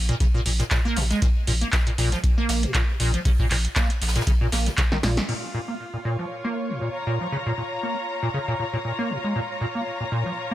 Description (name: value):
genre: acid house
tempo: 118 BPM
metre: 4/4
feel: swing 55% on 16ths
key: Bb minor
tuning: A4 = 440 Hz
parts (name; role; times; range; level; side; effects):
- round analog bass; bass; 0.0-5.2 s; Bb1; -24 LUFS; equal; tube saturation, sidechain pumping
- liquid acid bass; riff; 0.1-10.5 s; Ab2 to Bb3; -27 LUFS; equal; lush chorus, sidechain pumping, digital delay
- electro analog drum machine; drums; 0.1-5.4 s; crash cymbal, handclaps, hi-hat, snare drum; -27 LUFS; equal; none
- electronic kick drum; drums; 0.2-4.9 s; none; -22 LUFS; equal; none
- jazz brush drum kit; drums; 0.2-5.3 s; hi-hat, ride cymbal, snare drum; -35 LUFS; left 1 dB; sidechain pumping on cymbals, high-pass filter on cymbals, sidechain pumping on hats, high-pass filter on hats, high-pass filter on snare, high-pass filter on room
- rich studio string section; texture; 5.3-10.5 s; F4 to Bb5; -29 LUFS; left 1 dB; sidechain pumping
room: light reverb, small room ambience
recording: none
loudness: -22 LUFS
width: side -14 dB against mid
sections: 0.0-5.3 A section; 5.3-10.5 B section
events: drum fill 4.9-5.3; band accent 5.2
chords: 0.0 N.C.; 5.3 Bbm